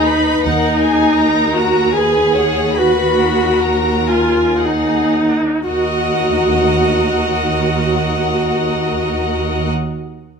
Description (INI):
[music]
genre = classical, slow romantic movement for string orchestra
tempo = 53-82 BPM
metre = 3/4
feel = rubato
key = Eb minor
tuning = A4 = 440 Hz
[part]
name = rich chamber violin section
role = melody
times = 0.0-9.7 s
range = Gb5 to Cb6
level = -22 LUFS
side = left 3 dB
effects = none
[part]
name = clear chamber violin section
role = second line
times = 0.0-9.7 s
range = Ab4 to Eb5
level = -21 LUFS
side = left 3 dB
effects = none
[part]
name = rich chamber viola section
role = accompaniment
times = 0.0-9.7 s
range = Eb4 to Ab4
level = -16 LUFS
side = right 1 dB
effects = none
[part]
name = rich studio cello section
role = bass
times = 0.0-9.7 s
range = Eb2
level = -21 LUFS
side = right 2 dB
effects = none
[part]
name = rich chamber double bass section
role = bass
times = 0.5-1.2, 5.7-9.7 s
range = Eb2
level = -23 LUFS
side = right 4 dB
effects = none
[sound]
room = moderate large studio reverb, RT60 1.4 s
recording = minimal, uncompressed stereo recording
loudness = -13 LUFS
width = side -6 dB against mid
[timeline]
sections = 0.0-5.7 A section; 5.7-10.4 B section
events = slowing down 0.0-5.7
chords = 0.5 Ebm; 2.8 Abm/Eb; 5.7 Ebm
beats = | 0.45 1.19 1.96 | 2.76 3.63 4.59 | 5.67 6.66 7.64 | 8.63 9.63